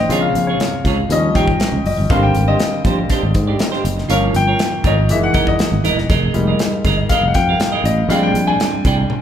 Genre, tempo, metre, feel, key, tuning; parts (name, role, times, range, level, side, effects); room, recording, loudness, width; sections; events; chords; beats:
polished 1980s jazz-funk pop; 120 BPM; 4/4; straight; A4 = 441 Hz
clear baby grand piano; accompaniment; 0.0-9.2 s; Db3 to Ab5; -18 LUFS; left 2 dB
semi-hollow electric guitar; riff; 0.0-9.1 s; D4 to G5; -22 LUFS; right 4 dB
sustaining fretless electric bass; bass; 0.0-9.0 s; Eb1 to Ab2; -18 LUFS; equal
modern studio drum kit; drums; 0.1-9.2 s; hi-hat, kick drum, snare drum, toms; -20 LUFS; equal
moderate large studio reverb, RT60 1.2 s; band playing live in one room; -13 LUFS; side -9 dB against mid
0.0-9.2 A section
grand piano solo 0.0-9.2
0.1 Bbm7; 1.1 Eb9; 2.1 Abmaj9#11; 4.1 Gm7b5; 5.1 Gb13; 6.1 Fm11; 8.1 Bb13
| 0.10 0.60 1.10 1.60 | 2.10 2.60 3.10 3.60 | 4.10 4.60 5.10 5.60 | 6.10 6.60 7.10 7.60 | 8.10 8.60 9.10